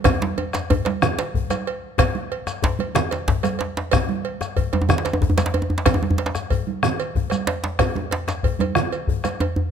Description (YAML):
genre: west african traditional, West African drum ensemble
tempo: 124 BPM (dotted quarters)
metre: 12/8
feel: straight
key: none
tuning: none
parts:
  - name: cowbell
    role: percussion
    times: 0.0-9.6 s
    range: none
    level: -28 LUFS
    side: right 7 dB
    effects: none
  - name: djembe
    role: percussion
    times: 0.0-9.4 s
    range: none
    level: -27 LUFS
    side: left 9 dB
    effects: none
  - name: bombo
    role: percussion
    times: 0.1-9.4 s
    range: none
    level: -24 LUFS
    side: left 3 dB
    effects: none
  - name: congas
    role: percussion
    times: 0.1-9.4 s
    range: none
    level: -26 LUFS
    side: right 9 dB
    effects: none
  - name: djembe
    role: percussion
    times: 0.1-9.7 s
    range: none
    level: -23 LUFS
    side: right 1 dB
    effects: none
  - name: shekere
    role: percussion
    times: 0.1-9.4 s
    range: none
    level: -31 LUFS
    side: right 2 dB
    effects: none
room: light reverb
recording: close, detailed microphones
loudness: -20 LUFS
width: side -8 dB against mid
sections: 0.0-9.7 A section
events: none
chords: none